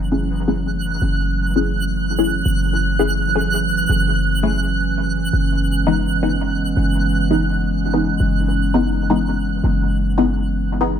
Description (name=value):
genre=drum and bass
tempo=167 BPM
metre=4/4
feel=straight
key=F# minor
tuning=A4 = 440 Hz
part: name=warbly tape-like pad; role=sustained chords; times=0.0-11.0 s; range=E3 to C#4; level=-22 LUFS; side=right 1 dB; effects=chorus, built-in reverb
part: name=warm 808-style bass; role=bass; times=0.0-11.0 s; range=F#1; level=-21 LUFS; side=equal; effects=tube saturation
part: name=twinkling granular texture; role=texture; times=0.1-11.0 s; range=F#6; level=-25 LUFS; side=right 4 dB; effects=built-in reverb
part: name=filtered dub chord stab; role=stabs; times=0.1-10.9 s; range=E3 to G#4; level=-21 LUFS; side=left 3 dB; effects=phaser, wide subtle chorus, dub echo
room=light reverb, digital ambience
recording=none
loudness=-16 LUFS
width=side -9 dB against mid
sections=0.0-11.0 A section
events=filter sweep on synth stab 0.0-11.0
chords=0.0 F#m7; 5.3 C#m7/F#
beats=0.30 0.66 | 1.02 1.38 1.74 2.10 | 2.45 2.81 3.17 3.53 | 3.89 4.25 4.61 4.97 | 5.33 5.69 6.05 6.41 | 6.77 7.12 7.48 7.84 | 8.20 8.56 8.92 9.28 | 9.64 10.00 10.36 10.72